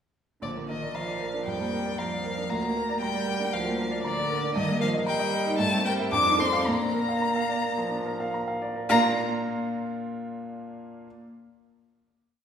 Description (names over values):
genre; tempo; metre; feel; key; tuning
quick classical-period movement for piano trio; 106-118 BPM; 4/4; rubato; Bb major; A4 = 441 Hz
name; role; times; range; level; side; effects
rich violin; melody; 0.4-9.2 s; D5 to D6; -28 LUFS; left 3 dB; none
rich cello; second line; 0.4-9.2 s; D3 to D4; -31 LUFS; right 3 dB; none
bright grand piano; accompaniment; 0.4-11.1 s; Bb1 to Bb5; -28 LUFS; right 1 dB; none
room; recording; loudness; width
wet recital hall reverb, RT60 1.6 s; recorded in a church or concert hall; -24 LUFS; side -8 dB against mid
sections
0.4-8.9 A section; 8.9-11.0 final chord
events
none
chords
0.4 Bb; 2.5 Bb/D; 4.6 Eb/G; 5.6 C7/G; 6.1 F7; 6.7 Bb